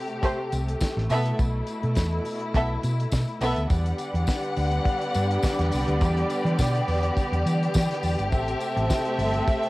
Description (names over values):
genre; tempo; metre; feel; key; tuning
disco; 104 BPM; 4/4; straight; E minor; A4 = 440 Hz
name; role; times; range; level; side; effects
rich studio string section; sustained chords; 0.0-9.7 s; B2 to F#5; -29 LUFS; left 1 dB; none
damped 70s drum kit; drums; 0.1-9.7 s; hi-hat, kick drum, snare drum; -27 LUFS; equal; cassette tape
warm studio violin section; second line; 0.2-9.7 s; A3 to E5; -28 LUFS; right 1 dB; none
tambourine; percussion; 0.2-9.6 s; none; -42 LUFS; left 2 dB; none
hollow-body short-scale fingered electric bass; bass; 0.5-9.4 s; G1 to E3; -25 LUFS; equal; none
room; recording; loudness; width
light reverb; home recording on cassette; -22 LUFS; side -19 dB against mid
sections
0.0-3.7 A section; 3.7-9.7 B section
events
none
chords
0.0 Am7; 1.1 B7sus4; 3.7 Em9; 8.3 Am7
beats
0.23 0.81 | 1.39 1.97 2.55 3.12 | 3.70 4.28 4.86 5.44 | 6.01 6.59 7.17 7.75 | 8.32 8.90 9.48